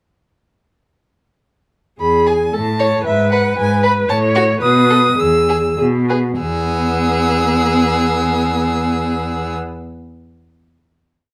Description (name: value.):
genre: quick classical-period movement for string quartet.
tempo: 97-118 BPM.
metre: 2/4.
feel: rubato.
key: E major.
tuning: A4 = 440 Hz.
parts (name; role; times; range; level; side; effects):
warm violin; melody; 2.0-9.5 s; E5 to E6; -22 LUFS; equal; none.
rich viola; accompaniment; 2.0-9.5 s; B3 to C#5; -20 LUFS; equal; none.
rich cello; bass; 2.0-9.5 s; E2 to B2; -21 LUFS; equal; none.
rich violin; second line; 2.3-9.5 s; F#4 to C#5; -23 LUFS; equal; none.
room: light reverb.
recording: none.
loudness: -16 LUFS.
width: mono.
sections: 2.0-6.4 variation; 6.4-8.8 final chord.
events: slowing down 3.6-6.4.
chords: 2.0 E; 2.5 A; 3.1 G#m7; 4.1 F#m/A (rootless); 4.6 B; 5.2 E.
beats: | 2.01 2.54 | 3.06 3.58 | 4.09 4.62 | 5.19 5.79 | 6.40 6.99 | 7.58 8.18.